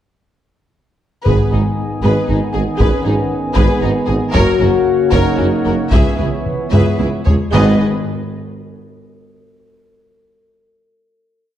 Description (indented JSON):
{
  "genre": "cinematic, epic orchestral film score",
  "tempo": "76 BPM (dotted quarters)",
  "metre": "6/8",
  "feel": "straight",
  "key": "G# minor",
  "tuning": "A4 = 440 Hz",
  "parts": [
    { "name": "rich symphonic violin section", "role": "melody", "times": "1.2-7.8 s", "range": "D#4 to E5", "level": "-26 LUFS", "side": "left 3 dB", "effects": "none" },
    { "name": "clear symphonic violin section", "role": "second line", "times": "1.3-7.8 s", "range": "C#4 to B4", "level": "-27 LUFS", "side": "left 2 dB", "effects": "none" },
    { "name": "rich symphonic viola section", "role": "accompaniment", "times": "1.3-7.8 s", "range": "G#4 to A#4", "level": "-24 LUFS", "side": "right 2 dB", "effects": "none" },
    { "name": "mellow French horn section", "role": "sustained chords", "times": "1.3-7.8 s", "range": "G#3 to F#4", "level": "-20 LUFS", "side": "left 6 dB", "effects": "none" },
    { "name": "mellow woodwind section", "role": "sustained chords", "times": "1.3-7.7 s", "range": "B3 to G#5", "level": "-26 LUFS", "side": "left 1 dB", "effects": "none" },
    { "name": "warm trombone section", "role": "sustained chords", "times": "1.3-7.8 s", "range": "C#3 to B3", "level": "-24 LUFS", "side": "right 4 dB", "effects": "none" },
    { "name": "clear symphonic cello section", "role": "bass", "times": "1.3-7.8 s", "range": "C#2 to G#2", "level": "-22 LUFS", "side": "right 1 dB", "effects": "none" },
    { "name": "rich symphonic double bass section", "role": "bass", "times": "1.3-7.8 s", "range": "F#1 to C#2", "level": "-21 LUFS", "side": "right 2 dB", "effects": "none" },
    { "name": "warm tuba", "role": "bass", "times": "1.3-7.8 s", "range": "F#1 to C#2", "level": "-22 LUFS", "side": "right 2 dB", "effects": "none" },
    { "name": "taiko ensemble", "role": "drums", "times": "1.3-7.5 s", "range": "none", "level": "-17 LUFS", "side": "equal", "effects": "none" },
    { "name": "timpani", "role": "percussion", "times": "1.3-2.0, 7.5-7.8 s", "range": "G#2", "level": "-20 LUFS", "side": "equal", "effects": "none" }
  ],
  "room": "moderate scoring stage reverb, RT60 1.8 s",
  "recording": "dark, warm production",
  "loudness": "-12 LUFS",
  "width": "side -11 dB against mid",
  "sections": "1.3-7.5 theme; 7.5-9.1 final chord",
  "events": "drum fill 6.7-7.5",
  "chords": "1.3 G#m; 4.3 F#; 5.9 C#m7; 7.5 G#m"
}